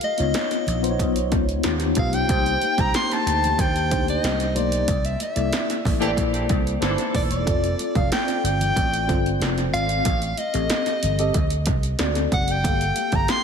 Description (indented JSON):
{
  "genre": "polished 1980s jazz-funk pop",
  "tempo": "93 BPM",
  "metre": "4/4",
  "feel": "straight",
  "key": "unclear",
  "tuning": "A4 = 440 Hz",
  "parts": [
    { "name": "breathy soprano saxophone", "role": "melody", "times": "0.0-13.4 s", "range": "D5 to C6", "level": "-25 LUFS", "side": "left 1 dB", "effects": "slapback echo" },
    { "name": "punchy analog drum machine", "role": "drums", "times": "0.0-13.4 s", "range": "hi-hat, kick drum, snare drum", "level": "-25 LUFS", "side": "right 1 dB", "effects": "none" },
    { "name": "congas", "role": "percussion", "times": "0.0-13.4 s", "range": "none", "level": "-39 LUFS", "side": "right 3 dB", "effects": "none" },
    { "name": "mellow tine electric piano", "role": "accompaniment", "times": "0.2-13.4 s", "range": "Bb3 to F5", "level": "-26 LUFS", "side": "left 2 dB", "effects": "medium stereo tremolo, wide subtle chorus, slapback echo" },
    { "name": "vintage slap bass", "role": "bass", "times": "0.2-13.3 s", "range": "Eb1 to D#2", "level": "-25 LUFS", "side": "right 1 dB", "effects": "none" },
    { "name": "clear horn section", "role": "second line", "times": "6.0-7.3 s", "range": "E3 to A4", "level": "-30 LUFS", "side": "right 1 dB", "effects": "slapback echo" }
  ],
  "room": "moderate lush hall reverb, RT60 3.0 s",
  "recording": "big arena sound",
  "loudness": "-19 LUFS",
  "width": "side -6 dB against mid",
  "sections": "0.0-13.4 A section",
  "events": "band accent 4.9-7.5",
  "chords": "0.0 C#9; 2.3 Cm7; 4.9 C13; 7.5 F6; 10.1 Am7b5; 11.3 D7; 12.6 Gm9"
}